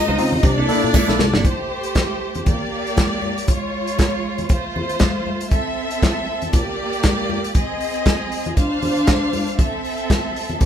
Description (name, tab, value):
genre	disco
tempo	118 BPM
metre	4/4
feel	swing 56% on 16ths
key	unclear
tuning	A4 = 439 Hz
part	rich studio string section	second line	0.0-10.7 s	Ab3 to F5	-22 LUFS	equal	none
part	barky tine electric piano	accompaniment	0.1-1.5 s	C3 to A4	-23 LUFS	left 3 dB	overdrive
part	clean electric guitar	accompaniment	0.1-1.5 s	Ab3 to E5	-24 LUFS	right 2 dB	none
part	fingered electric bass	bass	0.1-1.4 s	G1 to Db3	-23 LUFS	equal	none
part	warm soul drum kit	drums	0.2-10.7 s	handclaps, hi-hat, kick drum, snare drum	-19 LUFS	equal	none
part	congas	percussion	0.3-10.7 s	none	-27 LUFS	left 2 dB	none
part	tambourine	percussion	0.9-1.1 s	none	-32 LUFS	right 7 dB	none
room	wet large studio reverb, RT60 0.9 s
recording	band playing live in one room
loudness	-17 LUFS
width	side -9 dB against mid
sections	0.0-1.4 A section; 1.4-10.7 B section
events	drum fill 0.9-1.4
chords	0.4 C13; 1.4 Am7; 2.5 Bb6; 3.5 Db; 4.5 F/A; 5.5 C6; 6.5 Bb6; 7.6 Ab/C; 8.6 Dm7; 9.6 C6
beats	0.44 0.94 | 1.45 1.96 2.47 2.97 | 3.48 3.99 4.50 5.01 | 5.52 6.03 6.54 7.05 | 7.55 8.06 8.57 9.08 | 9.59 10.10 10.61